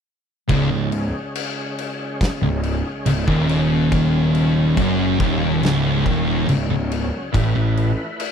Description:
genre	stoner and doom metal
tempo	70 BPM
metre	4/4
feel	straight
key	C# minor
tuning	A4 = 440 Hz
part	overdriven tonewheel organ	sustained chords	0.5-8.3 s	C#3 to B4	-31 LUFS	equal	slow rotary speaker, chorus vibrato
part	thick fuzz guitar	riff	0.5-7.9 s	C#2 to A2	-21 LUFS	left 9 dB	distortion
part	thick fuzz guitar	riff	0.5-7.9 s	C#2 to A2	-21 LUFS	right 9 dB	distortion
part	fuzz picked electric bass	bass	0.5-8.0 s	C#1 to A1	-24 LUFS	equal	overdrive
part	oversized low-tuned drum kit	drums	0.5-8.3 s	crash cymbal, kick drum, snare drum	-26 LUFS	left 1 dB	none
room	little or no reverb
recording	dry, close 1970s-style studio recording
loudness	-17 LUFS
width	side -7 dB against mid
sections	0.5-8.3 A section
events	none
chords	0.5 C#5; 7.3 A5

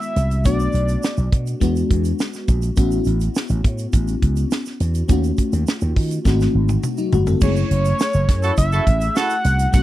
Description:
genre	polished 1980s jazz-funk pop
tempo	103 BPM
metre	4/4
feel	straight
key	unclear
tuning	A4 = 440 Hz
part	fat analog lead	melody	0.0-1.6, 7.4-9.8 s	C#5 to F#5	-23 LUFS	equal	slapback echo
part	FM electric piano with soft pad layer	accompaniment	0.0-9.8 s	D#3 to A4	-24 LUFS	left 3 dB	tremolo, lush chorus
part	tight funk drum kit	drums	0.0-9.8 s	crash cymbal, hi-hat, kick drum, snare drum, toms	-20 LUFS	equal	none
part	tube shaker	percussion	0.0-9.8 s	none	-39 LUFS	right 10 dB	none
part	slap bass with an envelope filter	bass	0.2-9.8 s	F#1 to D#3	-19 LUFS	equal	none
part	mellow horn section	second line	8.4-9.3 s	E4 to A4	-23 LUFS	right 5 dB	none
room	little or no reverb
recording	dry, close 1970s-style studio recording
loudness	-16 LUFS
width	side -15 dB against mid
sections	0.0-7.4 A section; 7.4-9.8 B section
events	drum fill 6.3-7.4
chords	0.5 Bm7; 1.6 E7; 2.8 A69; 5.1 D#m7b5; 6.3 G#7b9; 7.4 F#m7

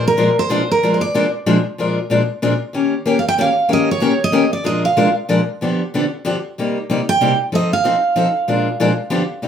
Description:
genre	jazz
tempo	188 BPM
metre	3/4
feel	swing 58% on 8ths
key	Bb mixolydian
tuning	A4 = 440 Hz
part	picked steel-string acoustic guitar	melody	0.0-9.5 s	Bb4 to G5	-17 LUFS	right 3 dB	plate reverb
part	picked steel-string acoustic guitar	accompaniment	0.0-9.5 s	G2 to Bb4	-17 LUFS	left 2 dB	none
room	wet studio ambience, RT60 0.5 s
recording	heard from further back in the room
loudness	-15 LUFS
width	side -8 dB against mid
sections	0.0-9.5 A section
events	none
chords	0.0 Bb7; 2.7 Eb7; 4.6 Bb7; 5.6 G7; 6.6 Cm7; 7.5 F7; 8.5 Bb7; 9.1 G7

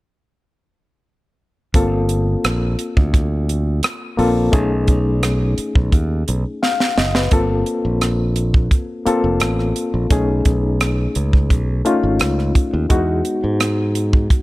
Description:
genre	lush 1970s-style soul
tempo	86 BPM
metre	4/4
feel	straight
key	unclear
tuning	A4 = 442 Hz
part	reed electric piano	accompaniment	1.7-14.4 s	G#3 to F5	-20 LUFS	left 2 dB	medium tremolo
part	modern bright fingered electric bass	bass	1.7-14.3 s	F1 to G#2	-19 LUFS	equal	none
part	tight funk drum kit	drums	1.7-14.4 s	hi-hat, kick drum, rim click, snare drum	-17 LUFS	right 1 dB	none
room	little or no reverb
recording	none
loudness	-15 LUFS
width	side -18 dB against mid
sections	1.7-7.3 A section; 7.3-14.4 B section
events	drum fill 6.6-7.3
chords	1.7 Gm11; 4.5 B13; 7.3 Gm11 (rootless); 10.1 B13; 12.9 Emaj9

